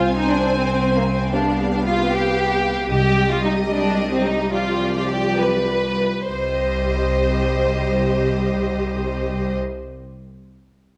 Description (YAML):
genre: classical, dramatic, fast romantic movement for symphony orchestra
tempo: 65-77 BPM (dotted quarters)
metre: 6/8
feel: rubato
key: C minor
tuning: A4 = 439 Hz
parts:
  - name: warm symphonic violin section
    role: melody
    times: 0.0-9.6 s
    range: D5 to Ab5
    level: -33 LUFS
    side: equal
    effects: none
  - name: rich symphonic violin section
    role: second line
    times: 0.0-9.6 s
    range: Bb3 to C5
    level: -24 LUFS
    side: equal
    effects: none
  - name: warm symphonic viola section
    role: accompaniment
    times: 0.0-9.6 s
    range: F3 to C5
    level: -26 LUFS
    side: equal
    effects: none
  - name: clear symphonic cello section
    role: bass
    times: 0.0-9.6 s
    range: C2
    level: -27 LUFS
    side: equal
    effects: none
  - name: rich symphonic double bass section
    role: bass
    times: 0.0-0.2, 2.9-3.4, 6.3-9.6 s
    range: C2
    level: -27 LUFS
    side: equal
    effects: none
room: moderate recital hall reverb, RT60 1.5 s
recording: none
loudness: -20 LUFS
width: mono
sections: 0.0-6.3 A section; 6.3-9.7 B section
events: slowing down 2.1-6.3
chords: 0.0 Bb7sus2/C (rootless); 1.3 G7/C; 2.9 Cm; 4.5 G7/C; 6.3 Cm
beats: 0.55 | 1.33 2.12 | 2.90 3.70 | 4.53 5.39 | 6.29 7.15 | 8.02 8.88